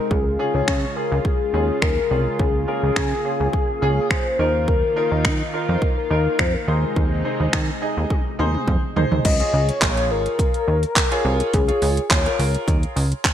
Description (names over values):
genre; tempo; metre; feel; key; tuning
dance-pop; 105 BPM; 4/4; straight; Db major; A4 = 440 Hz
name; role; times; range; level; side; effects
warm velvety synth lead; melody; 0.0-12.7 s; Ab4 to Eb5; -24 LUFS; left 3 dB; chorus, ping-pong delay
clear concert grand piano; accompaniment; 0.0-13.0 s; C4 to Eb5; -27 LUFS; right 2 dB; wide subtle chorus, sidechain pumping
lush unison pad; sustained chords; 0.0-9.2 s; C3 to F4; -30 LUFS; equal; chorus, sidechain pumping
plucky analog bass; bass; 0.1-13.1 s; Ab1 to Eb3; -21 LUFS; equal; sidechain pumping
pop drum kit; drums; 0.1-13.3 s; crash cymbal, finger snaps, handclaps, hi-hat, kick drum, toms; -21 LUFS; equal; gated reverb
room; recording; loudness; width
moderate lush hall reverb, RT60 1.8 s; bright 1980s-style digital production; -18 LUFS; side -10 dB against mid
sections
0.0-9.2 A section; 9.2-13.3 B section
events
drum fill 8.1-9.2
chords
0.1 Db; 4.4 Ebsus2; 6.7 Ab/Eb; 9.2 Db